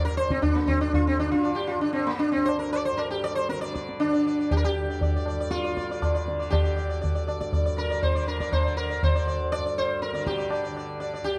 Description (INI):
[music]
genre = indian classical, Hindustani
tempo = 119 BPM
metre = 4/4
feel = straight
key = D raga malkauns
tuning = A4 = 442 Hz
[part]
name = sitar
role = melody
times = 0.0-11.4 s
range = Bb3 to D5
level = -28 LUFS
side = equal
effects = none
[part]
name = tanpura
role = drone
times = 0.0-11.4 s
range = D2 to D3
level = -39 LUFS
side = equal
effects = none
[part]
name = tabla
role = percussion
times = 0.2-11.2 s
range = none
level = -30 LUFS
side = equal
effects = none
[sound]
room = wet recital hall reverb, RT60 1.6 s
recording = dark, warm production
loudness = -26 LUFS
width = mono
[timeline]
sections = 0.0-11.4 A section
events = speeding up 0.0-11.4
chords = none